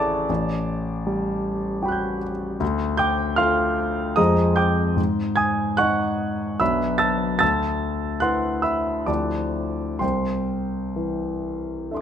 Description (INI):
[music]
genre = classical, impressionist solo piano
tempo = 62-80 BPM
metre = 3/4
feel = rubato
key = unclear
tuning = A4 = 440 Hz
[part]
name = warm concert grand piano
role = solo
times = 0.0-12.0 s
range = A1 to A6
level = -20 LUFS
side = equal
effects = none
[sound]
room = moderate recital hall reverb, RT60 1.3 s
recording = close, detailed microphones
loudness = -20 LUFS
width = side -8 dB against mid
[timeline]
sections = 0.0-12.0 A section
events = none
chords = 0.3 Gmaj7/A; 2.6 Dm7; 4.2 Fm7; 5.0 Ab5; 6.6 Bm7; 7.4 D13; 9.1 Dm11; 10.0 C